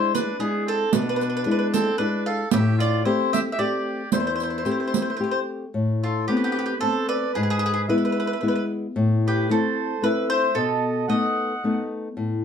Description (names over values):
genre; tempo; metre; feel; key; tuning
italian folk, Italian serenade; 112 BPM; 3/4; straight; A minor; A4 = 440 Hz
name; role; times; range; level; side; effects
bowl-back mandolin; melody; 0.0-11.9 s; F4 to F5; -25 LUFS; equal; none
clear oboe; second line; 0.0-11.9 s; B3 to F#5; -32 LUFS; right 5 dB; none
nylon-string guitar; accompaniment; 0.0-12.4 s; E2 to G4; -24 LUFS; left 2 dB; none
riq; percussion; 0.2-5.2 s; none; -24 LUFS; right 8 dB; none
room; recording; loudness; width
moderate studio reverb, RT60 0.6 s; dark, warm production; -21 LUFS; side -8 dB against mid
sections
0.0-5.8 A section; 5.8-12.4 B section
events
none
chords
0.0 E7; 2.5 Am7; 5.8 Amadd9; 7.4 E/G#; 9.0 Am; 10.6 B7